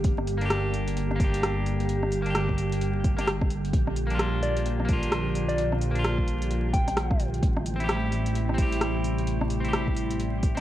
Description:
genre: future garage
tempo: 130 BPM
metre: 4/4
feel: swing 61% on 16ths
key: G dorian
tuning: A4 = 440 Hz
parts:
  - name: clean electric guitar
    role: accompaniment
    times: 0.0-10.6 s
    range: Bb3 to G4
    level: -34 LUFS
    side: left 1 dB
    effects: vintage 12-bit sampler grit, sidechain pumping, analog delay
  - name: warbly tape-like pad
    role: sustained chords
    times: 0.0-10.6 s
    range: C3 to G4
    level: -31 LUFS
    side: equal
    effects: chorus, built-in reverb, sidechain pumping
  - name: dark detuned saw bass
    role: bass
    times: 0.0-10.6 s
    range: G1 to Bb1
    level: -29 LUFS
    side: equal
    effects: sidechain pumping
  - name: deep house drum kit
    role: drums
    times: 0.0-10.6 s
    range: hi-hat, rim click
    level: -32 LUFS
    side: equal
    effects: vintage 12-bit sampler grit
  - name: electronic kick drum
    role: drums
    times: 0.0-10.5 s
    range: none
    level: -25 LUFS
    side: equal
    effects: vintage 12-bit sampler grit
  - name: wind-like tuned noise texture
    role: texture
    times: 0.0-10.6 s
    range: G3 to G4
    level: -36 LUFS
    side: right 6 dB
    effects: built-in reverb
  - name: soft struck synth lead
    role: melody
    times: 4.4-7.2 s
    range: D5 to G5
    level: -33 LUFS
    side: left 1 dB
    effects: chorus, tremolo, analog delay
room: light reverb, digital ambience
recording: vinyl crackle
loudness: -24 LUFS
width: side -13 dB against mid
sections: 0.0-10.6 A section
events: none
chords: 0.0 Gm; 3.7 Bb; 7.4 Am7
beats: | 0.04 0.51 0.97 1.43 | 1.89 2.35 2.81 3.27 | 3.73 4.20 4.66 5.12 | 5.58 6.04 6.50 6.97 | 7.43 7.89 8.35 8.81 | 9.27 9.73 10.20

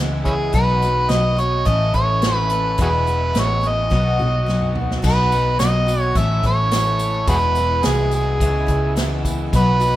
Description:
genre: folk rock and heartland rock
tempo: 107 BPM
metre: 4/4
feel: straight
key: unclear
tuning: A4 = 440 Hz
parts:
  - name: picked twelve-string acoustic guitar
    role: accompaniment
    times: 0.0-10.0 s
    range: E2 to F#4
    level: -25 LUFS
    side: left 2 dB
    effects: none
  - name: raw garage guitar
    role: riff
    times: 0.0-10.0 s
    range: E2 to F#4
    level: -28 LUFS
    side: equal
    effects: overdrive
  - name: hollow-body short-scale picked electric bass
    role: bass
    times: 0.0-10.0 s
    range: E1 to C#2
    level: -20 LUFS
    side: equal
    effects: none
  - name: overdriven harmonica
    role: melody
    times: 0.2-10.0 s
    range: C#4 to E5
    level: -20 LUFS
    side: right 1 dB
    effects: none
  - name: unplugged drum kit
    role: drums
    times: 0.2-9.9 s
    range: crash cymbal, hi-hat, kick drum, snare drum, toms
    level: -24 LUFS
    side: equal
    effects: none
  - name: tambourine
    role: percussion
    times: 5.0-9.9 s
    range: none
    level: -39 LUFS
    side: right 4 dB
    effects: none
room: light reverb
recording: rough home demo mix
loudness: -16 LUFS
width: side -14 dB against mid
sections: 0.0-5.0 A section; 5.0-10.0 A section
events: drum fill 3.9-5.0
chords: 0.0 C#m7; 0.5 B; 1.7 A; 2.8 E; 3.9 B; 6.2 A; 7.3 E; 8.4 C#m7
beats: | 0.55 1.11 1.67 2.23 | 2.79 3.36 3.92 4.48 | 5.04 5.60 6.17 6.73 | 7.29 7.85 8.41 8.97 | 9.53

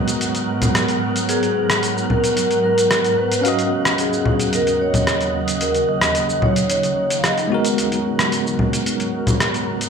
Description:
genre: sunset chillout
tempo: 111 BPM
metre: 4/4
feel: straight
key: unclear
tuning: A4 = 443 Hz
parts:
  - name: bell-like tine electric piano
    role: accompaniment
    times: 0.0-9.9 s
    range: Ab3 to F5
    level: -25 LUFS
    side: equal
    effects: fast stereo tremolo, auto-pan, low-pass filter, digital delay
  - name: shimmering ambient pad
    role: sustained chords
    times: 0.0-9.9 s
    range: Eb2 to Eb5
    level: -24 LUFS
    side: right 2 dB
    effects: chorus, built-in reverb
  - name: wind-like tuned noise texture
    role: texture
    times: 0.0-9.9 s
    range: Gb3 to Gb5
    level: -28 LUFS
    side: right 2 dB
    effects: built-in reverb
  - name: dusty soul sampler-style drum kit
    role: drums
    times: 0.1-9.9 s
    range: cabasa, congas, hi-hat, rim click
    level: -20 LUFS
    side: left 1 dB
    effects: none
  - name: vibraphone with soft mallets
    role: melody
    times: 1.3-7.6 s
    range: Gb4 to F5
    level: -20 LUFS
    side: equal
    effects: ping-pong delay
room: moderate lush hall reverb, RT60 1.6 s, digital ambience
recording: none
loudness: -16 LUFS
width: side -6 dB against mid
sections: 0.0-9.9 A section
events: filter sweep on tine electric piano 0.0-9.9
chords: 0.0 Abm9; 3.5 Ebm9; 7.5 Abm9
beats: 0.21 0.75 | 1.29 1.83 2.37 2.91 | 3.45 3.99 4.53 5.07 | 5.61 6.15 6.69 7.24 | 7.78 8.32 8.86 9.40

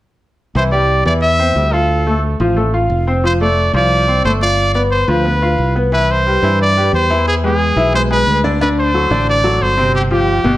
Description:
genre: latin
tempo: 179 BPM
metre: 4/4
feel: straight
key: C major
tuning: A4 = 436 Hz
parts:
  - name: bright trumpet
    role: melody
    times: 0.6-10.6 s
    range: G4 to E5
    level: -16 LUFS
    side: equal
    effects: none
  - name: bright concert grand piano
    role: accompaniment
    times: 0.6-10.6 s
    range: B2 to F5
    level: -17 LUFS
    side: left 1 dB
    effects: none
  - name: fingered electric bass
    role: bass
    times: 0.6-10.6 s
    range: F1 to G2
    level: -16 LUFS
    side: equal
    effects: none
room: moderate large studio reverb, RT60 0.9 s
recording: none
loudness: -12 LUFS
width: side -15 dB against mid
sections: 0.6-5.9 A section; 5.9-10.6 B section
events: none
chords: 0.6 Cadd9; 1.9 Dm7; 3.2 Fadd9; 4.6 G7; 5.9 Cmaj7; 7.3 E7; 8.6 D7; 9.9 G7sus4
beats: | 0.55 0.89 1.23 1.56 | 1.90 2.23 2.57 2.90 | 3.24 3.58 3.91 4.25 | 4.58 4.92 5.25 5.59 | 5.92 6.26 6.59 6.93 | 7.27 7.60 7.94 8.27 | 8.61 8.94 9.28 9.61 | 9.95 10.28

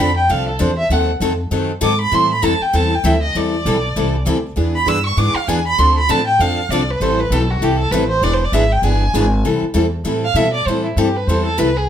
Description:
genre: acoustic string swing (jazz manouche)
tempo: 197 BPM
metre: 4/4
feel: swing 59% on 8ths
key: A minor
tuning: A4 = 440 Hz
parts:
  - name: warm violin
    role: melody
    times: 0.0-11.9 s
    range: E4 to E6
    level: -18 LUFS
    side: right 1 dB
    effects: none
  - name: picked steel-string acoustic guitar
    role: accompaniment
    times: 0.0-11.7 s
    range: D3 to A4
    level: -20 LUFS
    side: left 5 dB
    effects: none
  - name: picked steel-string acoustic guitar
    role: accompaniment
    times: 0.0-11.7 s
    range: D3 to B4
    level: -24 LUFS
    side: right 8 dB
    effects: none
  - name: upright bass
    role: bass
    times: 0.0-11.9 s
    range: E1 to B2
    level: -19 LUFS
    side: equal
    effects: none
room: moderate studio reverb, RT60 0.6 s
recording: none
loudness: -14 LUFS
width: side -9 dB against mid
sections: 0.0-9.4 A section; 9.4-11.9 A section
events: violin solo 0.0-9.4, 9.4-11.9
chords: 0.0 Dm7; 0.9 D#dim7; 2.1 Am7; 4.6 E7#9; 5.8 Dm7; 7.0 Am7; 8.2 E7#9; 9.4 Am7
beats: 0.29 0.60 | 0.90 1.21 1.51 1.82 | 2.12 2.43 2.74 3.04 | 3.35 3.65 3.96 4.26 | 4.57 4.87 5.17 5.48 | 5.79 6.09 6.39 6.70 | 7.00 7.31 7.61 7.92 | 8.22 8.53 8.83 9.14 | 9.44 9.75 10.05 10.36 | 10.66 10.97 11.27 11.58 | 11.88

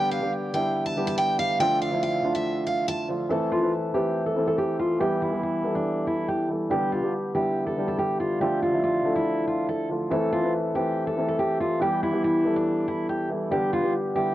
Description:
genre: hip hop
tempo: 141 BPM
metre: 4/4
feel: half-time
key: A minor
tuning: A4 = 440 Hz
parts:
  - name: picked steel-string acoustic guitar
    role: melody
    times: 0.0-14.3 s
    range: D4 to A5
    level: -25 LUFS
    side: equal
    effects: low-pass filter, analog delay
  - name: dark baby grand piano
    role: accompaniment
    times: 0.0-14.3 s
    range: D3 to B4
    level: -26 LUFS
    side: equal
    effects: low-pass filter
room: little or no reverb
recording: dry, gritty hardware recording, cassette tape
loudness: -23 LUFS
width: side -14 dB against mid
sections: 0.0-3.3 A section; 3.3-14.3 B section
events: filter sweep 3.3-14.3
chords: 0.0 G; 1.6 Dm; 3.3 Am; 5.0 Em; 6.7 G; 8.4 Dm; 10.1 Am; 11.8 Em; 13.5 G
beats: 0.33 0.75 1.18 | 1.60 2.03 2.45 2.88 | 3.30 3.73 4.16 4.58 | 5.01 5.43 5.86 6.28 | 6.71 7.13 7.56 7.99 | 8.41 8.84 9.26 9.69 | 10.11 10.54 10.96 11.39 | 11.81 12.24 12.66 13.09 | 13.52 13.94

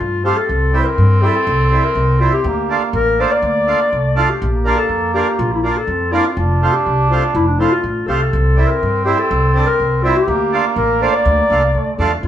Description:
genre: klezmer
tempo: 123 BPM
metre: 2/4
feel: straight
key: D minor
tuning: A4 = 439 Hz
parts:
  - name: breathy clarinet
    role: melody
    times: 0.0-12.3 s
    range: D4 to D5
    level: -18 LUFS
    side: left 3 dB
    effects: none
  - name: trombone with metal mute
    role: second line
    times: 0.0-12.3 s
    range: A3 to D4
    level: -21 LUFS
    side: right 4 dB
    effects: none
  - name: upright bass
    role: bass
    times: 0.0-12.3 s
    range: F1 to G2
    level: -17 LUFS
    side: equal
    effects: none
  - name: accordion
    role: accompaniment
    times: 0.2-12.1 s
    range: G3 to F4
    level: -20 LUFS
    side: right 3 dB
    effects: none
room: wet large studio reverb, RT60 0.8 s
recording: band playing live in one room, nothing above 10.5 kHz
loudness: -13 LUFS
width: side -10 dB against mid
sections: 0.0-4.4 A section; 4.4-12.2 A section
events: none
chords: 0.5 C; 2.5 Dm; 4.4 Bb; 6.4 F; 8.3 C; 10.3 Dm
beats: 0.01 | 0.49 0.98 | 1.47 1.96 | 2.46 2.94 | 3.44 3.92 | 4.42 4.91 | 5.40 5.89 | 6.38 6.87 | 7.36 7.84 | 8.33 8.82 | 9.31 9.80 | 10.29 10.77 | 11.26 11.75 | 12.24

